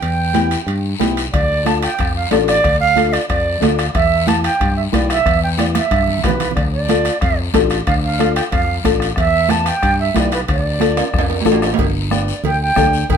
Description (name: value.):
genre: latin, cumbia.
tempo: 184 BPM.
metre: 4/4.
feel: straight.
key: D dorian.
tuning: A4 = 442 Hz.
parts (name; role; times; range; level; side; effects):
concert flute; melody; 0.0-13.2 s; B4 to A5; -18 LUFS; right 4 dB; none.
fingered electric bass; bass; 0.0-13.2 s; G1 to G2; -20 LUFS; equal; none.
congas; percussion; 0.0-13.2 s; none; -22 LUFS; right 8 dB; none.
guiro; percussion; 0.0-13.2 s; none; -28 LUFS; left 6 dB; none.
timbales and cowbell; percussion; 0.0-13.2 s; none; -24 LUFS; right 6 dB; none.
flamenco guitar; accompaniment; 0.3-13.0 s; B3 to B4; -19 LUFS; left 9 dB; none.
bombo; percussion; 1.3-13.2 s; none; -21 LUFS; left 2 dB; none.
room: moderate studio reverb, RT60 0.6 s.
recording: band playing live in one room.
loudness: -14 LUFS.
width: side -7 dB against mid.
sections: 0.0-11.8 A section; 11.8-13.2 B section.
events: drum fill 5.7-6.6, 11.0-11.8.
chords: 0.0 Em; 1.3 Dm; 3.9 Em; 6.6 Dm; 9.2 Em; 10.5 Dm; 11.8 G.